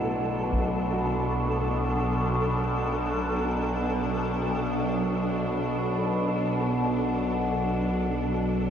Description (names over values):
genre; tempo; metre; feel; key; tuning
dark ambient drone; free time; none; none; B minor; A4 = 439 Hz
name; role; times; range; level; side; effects
rich symphonic cello section; sustained chords; 0.0-8.7 s; B2 to D4; -29 LUFS; equal; none
warm baby grand piano; arpeggios; 0.0-8.7 s; A2 to F#4; -38 LUFS; equal; none
overtone-sweeping drone; drone; 0.0-8.7 s; B1 to B2; -27 LUFS; equal; chorus, built-in reverb, phaser
flickering grainy texture; texture; 0.0-8.7 s; A4; -34 LUFS; equal; built-in reverb
taiko ensemble; percussion; 0.5-0.7 s; none; -34 LUFS; equal; none
room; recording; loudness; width
wet huge ambient reverb, RT60 7.6 s; none; -24 LUFS; side -8 dB against mid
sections
0.0-8.7 A section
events
none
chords
0.0 Bm7